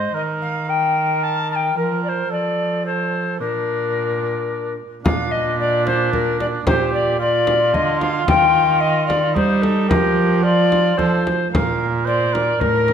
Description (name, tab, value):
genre	classical, renaissance-style consort dance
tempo	111 BPM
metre	3/4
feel	straight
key	Bb major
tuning	A4 = 441 Hz
part	alto recorder	melody	0.0-12.9 s	A4 to A5	-19 LUFS	left 4 dB	none
part	mellow cor anglais	second line	0.0-12.9 s	D4 to C5	-24 LUFS	right 5 dB	none
part	warm cello	bass	0.0-12.9 s	Ab2 to G3	-22 LUFS	right 2 dB	none
part	frame drum	percussion	5.1-12.9 s	none	-24 LUFS	left 1 dB	none
room	moderate recital hall reverb, RT60 1.4 s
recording	none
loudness	-16 LUFS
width	side -8 dB against mid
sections	0.0-5.0 A section; 5.0-12.9 B section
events	none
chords	0.2 Eb; 1.8 Fsus4; 3.4 Bb; 6.7 Gm/Bb; 8.3 Eb; 9.9 Fsus4; 11.5 Bb